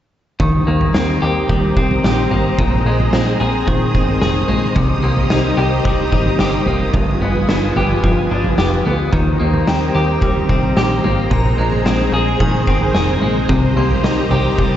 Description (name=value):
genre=dream pop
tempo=110 BPM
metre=4/4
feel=straight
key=Eb major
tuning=A4 = 440 Hz
part: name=string machine, cellos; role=sustained chords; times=0.4-14.8 s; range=F4 to Eb6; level=-21 LUFS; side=equal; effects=ensemble chorus, shimmer reverb
part: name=clean electric guitar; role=arpeggios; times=0.4-14.8 s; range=G2 to Ab4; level=-18 LUFS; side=left 2 dB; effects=wide subtle chorus, tape echo, shimmer reverb
part: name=plucky analog bass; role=bass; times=0.4-14.8 s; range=F1 to Eb2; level=-20 LUFS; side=equal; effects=none
part: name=oversized low-tuned drum kit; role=drums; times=0.4-14.7 s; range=kick drum, snare drum, toms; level=-18 LUFS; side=equal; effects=none
part: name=shimmering bell with halo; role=texture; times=9.7-14.8 s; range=G5 to C6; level=-29 LUFS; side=right 1 dB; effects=ensemble chorus, tape echo, shimmer reverb
room=moderate echo chamber reverb, RT60 1.4 s, studio ambience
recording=echo-heavy mix, nothing above 7.7 kHz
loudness=-13 LUFS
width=side -11 dB against mid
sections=0.4-14.8 A section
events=none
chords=0.4 Eb6; 2.6 Bb9sus4; 6.9 G7b9b13; 9.1 Eb6; 11.3 Bb9sus4